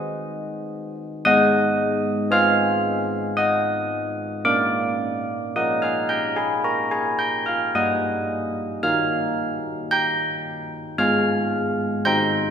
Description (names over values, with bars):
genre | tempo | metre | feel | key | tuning
classical, tune for church bells | 56 BPM | 3/4 | straight | unclear | A4 = 440 Hz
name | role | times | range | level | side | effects
carillon bells | solo | 0.0-12.5 s | G3 to G6 | -20 LUFS | equal | none
room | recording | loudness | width
wet church reverb, RT60 2.7 s | minimal, uncompressed stereo recording | -20 LUFS | side -7 dB against mid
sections
0.0-12.5 A section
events
none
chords
0.0 Ab; 4.5 Bb; 7.7 Eb/G; 11.0 Ab